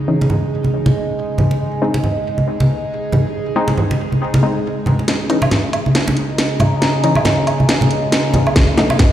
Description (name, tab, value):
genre	deep dubstep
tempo	138 BPM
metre	4/4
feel	swing 59% on 16ths, half-time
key	unclear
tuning	A4 = 440 Hz
part	overtone-sweeping drone	sustained chords	0.0-9.1 s	C#3 to G#4	-20 LUFS	right 1 dB	chorus, built-in reverb, phaser
part	filtered dub chord stab	stabs	0.1-8.8 s	E3 to D#4	-22 LUFS	left 2 dB	chorus, dub echo
part	congas	percussion	0.2-9.1 s	none	-17 LUFS	right 1 dB	none
part	garage drum kit	drums	5.1-9.1 s	hi-hat, snare drum, woodblock	-17 LUFS	equal	low-pass filter on snare, studio ambience, low-pass filter on hats, low-pass filter on perc
part	electronic kick drum	drums	8.6-9.1 s	none	-12 LUFS	equal	studio ambience
room	moderate lush hall reverb, RT60 2.4 s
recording	played on a big sound system in a bare room, large studio reverb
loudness	-14 LUFS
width	side -11 dB against mid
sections	0.0-5.1 A section; 5.1-9.1 B section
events	filter sweep on synth drone 0.0-5.1; build-up 5.1-9.1; drum fill 5.1-9.1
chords	0.0 C#sus2; 1.6 G#; 5.1 C#sus2; 8.6 D#dim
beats	0.30 0.73 1.17 | 1.60 2.04 2.47 2.91 | 3.34 3.78 4.21 4.65 | 5.08 5.52 5.95 6.38 | 6.82 7.25 7.69 8.12 | 8.56 8.99